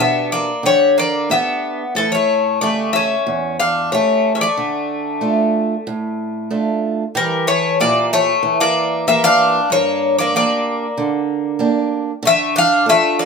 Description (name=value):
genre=greek folk, Greek bouzouki band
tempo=93 BPM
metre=4/4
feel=straight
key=D harmonic minor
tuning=A4 = 440 Hz
part: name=Greek bouzouki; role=melody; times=0.0-13.3 s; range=A4 to F5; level=-16 LUFS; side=left 3 dB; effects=none
part: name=Greek bouzouki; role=second line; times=0.0-13.3 s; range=E3 to D4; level=-20 LUFS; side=left 2 dB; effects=none
part: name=picked old ladder-braced acoustic guitar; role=accompaniment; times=0.0-13.3 s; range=E2 to A4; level=-20 LUFS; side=right 4 dB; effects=none
room=moderate studio reverb, RT60 0.6 s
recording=minimal, uncompressed stereo recording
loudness=-14 LUFS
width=side -5 dB against mid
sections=0.0-7.2 A section; 7.2-13.3 B section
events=speeding up 0.0-13.3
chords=0.0 G; 2.0 A7; 4.6 Dm; 7.2 Edim; 9.7 Gm; 12.2 Dm